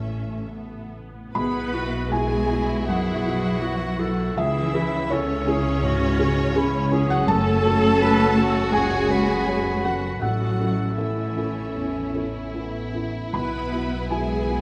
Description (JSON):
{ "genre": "cinematic, emotional film score for orchestra", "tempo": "74-84 BPM", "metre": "4/4", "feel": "rubato", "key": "unclear", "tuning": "A4 = 441 Hz", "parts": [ { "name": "warm symphonic violin section", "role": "melody", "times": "0.0-14.6 s", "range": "C#5 to B5", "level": "-36 LUFS", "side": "equal", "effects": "none" }, { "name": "warm symphonic violin section", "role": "second line", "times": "0.0-14.6 s", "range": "B3 to A4", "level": "-34 LUFS", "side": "equal", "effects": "none" }, { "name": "felt-muted upright piano", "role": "accompaniment", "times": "0.0-14.6 s", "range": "A1 to B5", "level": "-29 LUFS", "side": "equal", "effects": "none" }, { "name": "warm symphonic viola section", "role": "accompaniment", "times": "0.0-14.6 s", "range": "B3 to B4", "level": "-31 LUFS", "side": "equal", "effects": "none" }, { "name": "dark symphonic cello section", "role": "bass", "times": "0.0-14.6 s", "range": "A2 to B3", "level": "-30 LUFS", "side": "equal", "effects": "none" }, { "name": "rich symphonic double bass section", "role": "bass", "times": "0.0-14.6 s", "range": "F#1 to C#2", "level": "-30 LUFS", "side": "equal", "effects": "none" }, { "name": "clear clarinet", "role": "second line", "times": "1.4-12.9 s", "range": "E4 to C#5", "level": "-33 LUFS", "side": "equal", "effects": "none" }, { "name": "mellow French horn section", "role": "sustained chords", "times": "1.4-14.6 s", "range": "B3 to F#4", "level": "-35 LUFS", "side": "equal", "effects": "none" } ], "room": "moderate scoring stage reverb, RT60 1.5 s", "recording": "none", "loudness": "-23 LUFS", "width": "mono", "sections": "0.0-1.4 A section; 1.4-14.6 A section", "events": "none", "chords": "0.0 A; 1.4 Bsus4; 4.4 C#m; 7.3 F#m; 10.2 A; 13.3 Bsus4", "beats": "0.55 | 1.35 2.12 2.88 3.62 | 4.37 5.10 5.83 6.55 | 7.28 8.01 8.73 9.47 | 10.22 10.98 11.76 12.55 | 13.34 14.11" }